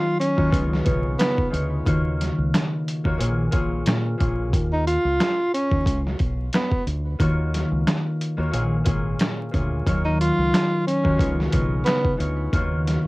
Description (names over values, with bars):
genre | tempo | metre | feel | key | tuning
hip hop, boom-bap hip-hop | 90 BPM | 4/4 | swing 55% on 16ths | Eb minor | A4 = 439 Hz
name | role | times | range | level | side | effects
warm tenor saxophone | melody | 0.0-12.2 s | Cb4 to F4 | -24 LUFS | equal | high-pass filter, low-pass filter
concert harp | accompaniment | 0.0-13.1 s | Bb2 to Db5 | -25 LUFS | left 1 dB | high-pass filter, low-pass filter, cassette tape
dusty soul sampler-style drum kit | drums | 0.2-13.0 s | hi-hat, kick drum, snare drum | -24 LUFS | equal | overdrive, cassette tape
deep dub fingered electric bass | bass | 0.4-13.1 s | Ab1 to Bb2 | -25 LUFS | equal | none
room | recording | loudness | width
light reverb | home recording on cassette, vinyl crackle | -20 LUFS | side -22 dB against mid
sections
0.0-13.1 A section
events
none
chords
0.0 Ebm9; 0.5 Db9; 1.9 Ebm9; 3.2 Bbm7; 4.5 Ebsus2; 5.9 Bmadd9; 7.2 Ebm9; 8.5 Bbm7; 9.9 Ebm9; 11.2 Db9; 12.5 Ebm9